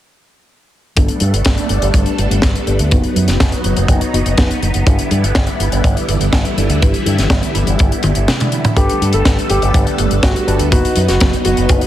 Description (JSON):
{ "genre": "italo disco", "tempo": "123 BPM", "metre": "4/4", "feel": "straight", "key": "unclear", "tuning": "A4 = 440 Hz", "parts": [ { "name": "phased string machine", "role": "sustained chords", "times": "1.0-11.9 s", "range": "D3 to A4", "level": "-20 LUFS", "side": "right 1 dB", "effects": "ensemble chorus, phaser" }, { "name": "chorused polysynth", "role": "stabs", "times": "1.0-11.9 s", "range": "B3 to D#5", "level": "-23 LUFS", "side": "left 2 dB", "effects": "none" }, { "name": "fingered electric bass with an envelope filter", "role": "bass", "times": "1.0-11.8 s", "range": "F#1 to G2", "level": "-16 LUFS", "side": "equal", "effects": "tube saturation" }, { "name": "kick drum", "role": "drums", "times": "1.0-11.8 s", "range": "none", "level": "-15 LUFS", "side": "equal", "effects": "none" }, { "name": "tight funk drum kit", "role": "drums", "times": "1.0-11.9 s", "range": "hi-hat, snare drum, toms", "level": "-20 LUFS", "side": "left 1 dB", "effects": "none" }, { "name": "dark concert grand piano", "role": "melody", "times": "8.8-11.7 s", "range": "F#4 to A4", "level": "-19 LUFS", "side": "equal", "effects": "tape echo" } ], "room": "light reverb, small room ambience", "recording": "heavily compressed radio sound, multiband compression", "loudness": "-12 LUFS", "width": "side -12 dB against mid", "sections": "1.0-8.8 A section; 8.8-11.9 B section", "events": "drum fill 8.0-8.8", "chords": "1.0 Gadd9; 2.9 B/F#; 4.9 Em7/G; 8.8 Gadd9; 10.7 B/F#", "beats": "| 0.96 1.45 1.94 2.43 | 2.92 3.40 3.89 4.38 | 4.87 5.36 5.84 6.33 | 6.82 7.31 7.79 8.28 | 8.77 9.26 9.74 10.23 | 10.72 11.21 11.70" }